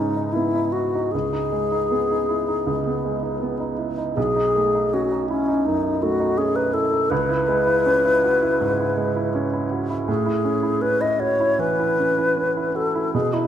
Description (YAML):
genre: classical, impressionist duo for alto flute and grand piano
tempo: 80 BPM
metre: 4/4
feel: rubato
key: C# minor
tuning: A4 = 441 Hz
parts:
  - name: alto flute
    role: melody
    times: 0.0-13.5 s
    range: C#4 to D#5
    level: -21 LUFS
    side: left 2 dB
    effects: none
  - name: warm baby grand piano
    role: accompaniment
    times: 0.0-13.5 s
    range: B1 to F#4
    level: -23 LUFS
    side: right 4 dB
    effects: none
room: wet recital hall reverb, RT60 1.8 s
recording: none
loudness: -19 LUFS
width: side -10 dB against mid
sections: 0.0-13.5 A section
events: none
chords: 0.0 C#m9; 4.2 B9; 7.1 C#m7; 10.1 Amaj9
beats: 0.36 | 1.13 1.91 2.67 3.41 | 4.17 4.93 5.67 6.39 | 7.11 7.86 8.60 9.34 | 10.08 10.83 11.60 12.37 | 13.14